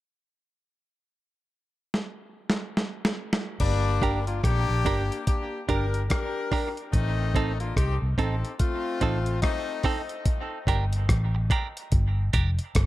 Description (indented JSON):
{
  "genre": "dub reggae",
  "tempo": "72 BPM",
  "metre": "4/4",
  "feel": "swing 62% on 16ths",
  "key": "G minor",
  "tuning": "A4 = 440 Hz",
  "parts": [
    { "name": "dusty soul sampler-style drum kit", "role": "drums", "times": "1.9-12.9 s", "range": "crash cymbal, hi-hat, kick drum, rim click, snare drum", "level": "-26 LUFS", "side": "equal", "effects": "none" },
    { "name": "clear horn section", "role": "second line", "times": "3.6-10.1 s", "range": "G3 to Bb4", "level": "-31 LUFS", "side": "left 4 dB", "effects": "high-pass filter, dub echo" },
    { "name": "vintage muted fingered electric bass", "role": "bass", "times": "3.6-12.9 s", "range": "F1 to C2", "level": "-26 LUFS", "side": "equal", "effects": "none" },
    { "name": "clean electric guitar", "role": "accompaniment", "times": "4.0-12.5 s", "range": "C4 to Bb4", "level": "-32 LUFS", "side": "right 5 dB", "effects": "tremolo, high-pass filter, dub echo" }
  ],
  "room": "light reverb",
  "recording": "none",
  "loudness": "-24 LUFS",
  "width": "side -16 dB against mid",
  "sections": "0.3-3.6 A section; 3.6-10.3 B section; 10.3-12.9 C section",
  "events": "drum fill 1.9-3.6; filter sweep 6.9-12.9",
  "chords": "0.3 N.C.; 3.6 Gm; 6.9 Adim; 10.3 Gm"
}